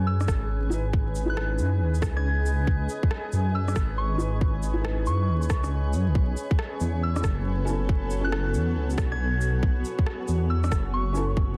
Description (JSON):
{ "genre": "future garage", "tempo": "138 BPM", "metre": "4/4", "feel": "swing 64% on 16ths", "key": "C# minor", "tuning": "A4 = 445 Hz", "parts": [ { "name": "granular cloud pad", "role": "sustained chords", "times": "0.0-11.6 s", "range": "B3 to G#5", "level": "-37 LUFS", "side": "equal", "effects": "built-in reverb, sidechain pumping" }, { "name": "dark detuned saw bass", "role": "bass", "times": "0.0-11.6 s", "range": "F#1 to F#2", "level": "-28 LUFS", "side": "equal", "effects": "sidechain pumping" }, { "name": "drifting glass-harmonics texture", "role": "texture", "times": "0.0-11.6 s", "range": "B4", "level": "-45 LUFS", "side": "equal", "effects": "chorus, built-in reverb" }, { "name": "soft synth bell", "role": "melody", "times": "0.1-11.2 s", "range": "C#6 to G#6", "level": "-37 LUFS", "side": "equal", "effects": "chorus, analog delay" }, { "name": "electronic rim click and shaker", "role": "drums", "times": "0.2-11.3 s", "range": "none", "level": "-38 LUFS", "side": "equal", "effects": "soft clipping on snare" }, { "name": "electronic kick drum", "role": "drums", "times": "0.3-11.5 s", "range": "none", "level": "-27 LUFS", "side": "equal", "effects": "none" }, { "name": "felt-muted upright piano", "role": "accompaniment", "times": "0.7-11.2 s", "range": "C#4 to B4", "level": "-36 LUFS", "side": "equal", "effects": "vintage 12-bit sampler grit, sidechain pumping, analog delay" } ], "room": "little or no reverb", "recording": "dense, heavily limited modern master, vinyl crackle", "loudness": "-26 LUFS", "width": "mono", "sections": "0.0-11.6 A section", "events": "none", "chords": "0.0 C#m7; 6.2 B7sus4" }